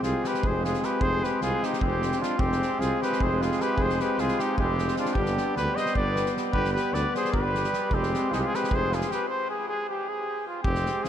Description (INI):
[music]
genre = balkan folk, Balkan brass band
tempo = 305 BPM (eighths)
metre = 7/8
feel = straight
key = F dorian sharp4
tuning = A4 = 439 Hz
[part]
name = clear trumpet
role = melody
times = 0.0-11.1 s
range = F4 to Eb5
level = -29 LUFS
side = equal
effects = ping-pong delay
[part]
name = clear flugelhorn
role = second line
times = 0.0-11.1 s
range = C4 to C5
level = -31 LUFS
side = left 3 dB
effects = none
[part]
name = brilliant trombone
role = accompaniment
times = 0.0-11.1 s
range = G3 to Ab3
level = -34 LUFS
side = right 5 dB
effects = none
[part]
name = clear euphonium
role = accompaniment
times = 0.0-11.1 s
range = B3 to C4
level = -33 LUFS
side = left 2 dB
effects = none
[part]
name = mellow tuba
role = bass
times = 0.0-11.1 s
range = F1 to D2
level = -30 LUFS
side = right 1 dB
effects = none
[part]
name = loose indie drum kit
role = percussion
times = 0.0-11.1 s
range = kick drum, snare drum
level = -32 LUFS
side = equal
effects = none
[sound]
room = moderate huge ambient reverb, RT60 7.2 s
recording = dreamy mix soaked in reverb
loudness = -24 LUFS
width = side -10 dB against mid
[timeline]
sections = 0.0-10.7 A section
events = stop 9.3-10.7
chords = 0.0 Fm; 5.2 G; 7.9 Fm